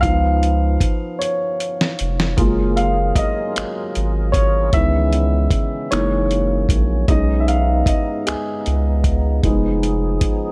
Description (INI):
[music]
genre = slow six-eight R&B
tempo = 51 BPM (dotted quarters)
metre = 6/8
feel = straight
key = unclear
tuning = A4 = 440 Hz
[part]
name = dark baby grand piano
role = accompaniment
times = 0.0-10.5 s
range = Eb3 to F5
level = -23 LUFS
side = equal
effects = none
[part]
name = round analog bass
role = bass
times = 0.0-10.3 s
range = F1 to Db2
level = -21 LUFS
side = equal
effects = none
[part]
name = dusty soul sampler-style drum kit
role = drums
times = 0.0-10.4 s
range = finger snaps, hi-hat, kick drum, snare drum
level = -22 LUFS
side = equal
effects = none
[part]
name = tonewheel organ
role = sustained chords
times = 2.4-10.5 s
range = Db3 to Bb4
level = -29 LUFS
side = equal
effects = overdrive, chorus vibrato, slow rotary speaker
[sound]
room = light reverb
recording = none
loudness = -18 LUFS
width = mono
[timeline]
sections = 0.0-10.5 A section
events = grand piano solo 0.0-10.5; drum fill 1.2-2.4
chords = 0.0 Db7; 2.4 Gbmaj9; 4.7 Dbm7; 5.9 Gb13; 7.1 B69; 9.4 Fm7b5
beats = | 0.03 1.20 | 2.38 3.56 | 4.73 5.91 | 7.08 8.26 | 9.44